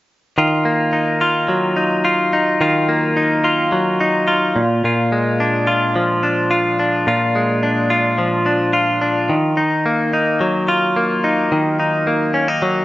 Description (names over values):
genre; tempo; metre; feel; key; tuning
indie pop; 108 BPM; 4/4; straight; Eb minor; A4 = 440 Hz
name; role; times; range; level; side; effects
direct-recorded clean electric guitar; solo; 0.4-12.8 s; Bb2 to F4; -14 LUFS; equal; none
room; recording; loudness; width
light reverb, digital ambience; rough home demo mix, nothing above 7.6 kHz; -14 LUFS; side -16 dB against mid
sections
0.4-9.3 A section; 9.3-12.8 B section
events
none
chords
0.4 Ebmadd9; 4.6 Bb7; 9.3 Ebmadd9